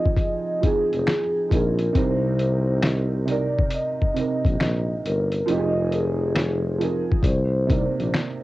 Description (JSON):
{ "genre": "lo-fi hip hop", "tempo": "68 BPM", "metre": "4/4", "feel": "swing 66% on 16ths", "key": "C minor", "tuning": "A4 = 440 Hz", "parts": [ { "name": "vibraphone with soft mallets", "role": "melody", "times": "0.0-8.1 s", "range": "Ab4 to Eb5", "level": "-26 LUFS", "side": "left 1 dB", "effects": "low-pass filter, cassette tape" }, { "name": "felt-muted upright piano", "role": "accompaniment", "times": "0.0-8.4 s", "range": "C3 to D5", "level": "-27 LUFS", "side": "right 5 dB", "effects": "cassette tape, low-pass filter" }, { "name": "lo-fi sampler-style drum kit", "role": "drums", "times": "0.1-8.4 s", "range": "finger snaps, hi-hat, kick drum, snare drum", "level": "-23 LUFS", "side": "left 1 dB", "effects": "cassette tape" }, { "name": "mellow tuba", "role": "bass", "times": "0.9-8.1 s", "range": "F1 to C2", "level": "-24 LUFS", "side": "left 1 dB", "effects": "transformer saturation" }, { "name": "finger snap", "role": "percussion", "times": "1.1-8.4 s", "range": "none", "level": "-43 LUFS", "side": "left 8 dB", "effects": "none" } ], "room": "moderate booth ambience, RT60 0.2 s", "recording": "home recording on cassette", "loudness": "-20 LUFS", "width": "side -17 dB against mid", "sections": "0.0-8.4 A section", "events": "none", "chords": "0.0 Fm7; 2.0 Cm7; 5.5 Fm7; 7.2 Cm9", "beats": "0.19 1.07 | 1.95 2.83 3.72 4.60 | 5.48 6.36 7.25 8.13" }